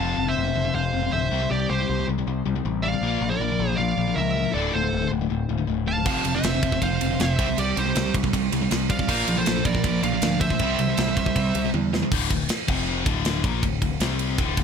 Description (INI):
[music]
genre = heavy metal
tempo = 158 BPM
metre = 4/4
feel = straight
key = unclear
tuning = A4 = 439 Hz
[part]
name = high-gain lead guitar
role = melody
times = 0.0-11.7 s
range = C5 to A5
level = -28 LUFS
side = right 2 dB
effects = distortion
[part]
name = high-gain lead guitar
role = second line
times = 0.0-11.7 s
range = G4 to F5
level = -32 LUFS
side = right 4 dB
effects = distortion
[part]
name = sludgy distorted guitar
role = riff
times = 0.0-14.6 s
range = D2 to C4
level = -27 LUFS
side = left 12 dB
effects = overdrive
[part]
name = growling picked electric bass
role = bass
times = 0.0-14.6 s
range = D1 to E2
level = -28 LUFS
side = equal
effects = overdrive
[part]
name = distorted electric guitar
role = riff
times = 6.1-12.1 s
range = F2 to C4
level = -26 LUFS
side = right 15 dB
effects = overdrive
[part]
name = tight metal drum kit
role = drums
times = 6.1-14.6 s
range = crash cymbal, kick drum, ride cymbal, snare drum, toms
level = -26 LUFS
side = right 1 dB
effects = none
[sound]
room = light reverb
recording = none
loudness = -21 LUFS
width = side -6 dB against mid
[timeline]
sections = 0.0-12.1 A section; 12.1-14.6 B section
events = drum fill 11.7-12.1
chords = 0.0 F5; 1.3 C5; 3.0 Bb; 4.5 D5; 6.1 F5; 7.4 C5; 9.1 Bb; 10.6 C; 12.1 D5; 12.7 F5; 13.1 Dm; 14.0 C5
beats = 0.36 0.75 1.13 | 1.51 1.89 2.27 2.65 | 3.03 3.41 3.79 4.17 | 4.55 4.93 5.30 5.68 | 6.06 6.44 6.82 7.20 | 7.58 7.96 8.34 8.71 | 9.09 9.47 9.85 10.23 | 10.61 10.98 11.36 11.74 | 12.12 12.50 12.88 13.25 | 13.63 14.01 14.39